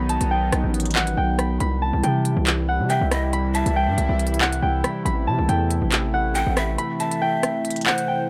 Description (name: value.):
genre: hip hop, drill.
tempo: 139 BPM.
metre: 4/4.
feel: half-time.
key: unclear.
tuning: A4 = 440 Hz.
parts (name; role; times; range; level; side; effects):
concert harp; melody; 0.0-8.3 s; F#5 to B5; -28 LUFS; equal; low-pass filter, tape echo.
sweeping resonant pad; sustained chords; 0.0-8.3 s; C3 to E4; -29 LUFS; equal; chorus.
distorted 808-style bass; bass; 0.0-6.8 s; A1 to C3; -25 LUFS; equal; distortion.
drill drum kit; drums; 0.1-8.1 s; handclaps, hi-hat, rim click; -26 LUFS; equal; none.
breathy large pan pipes; second line; 2.9-8.3 s; C5 to F#5; -31 LUFS; equal; tape echo.
room: little or no reverb.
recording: none.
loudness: -22 LUFS.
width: mono.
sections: 0.0-8.3 A section.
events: kick muted 6.8-8.3.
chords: 0.0 B; 1.6 C; 5.1 Am.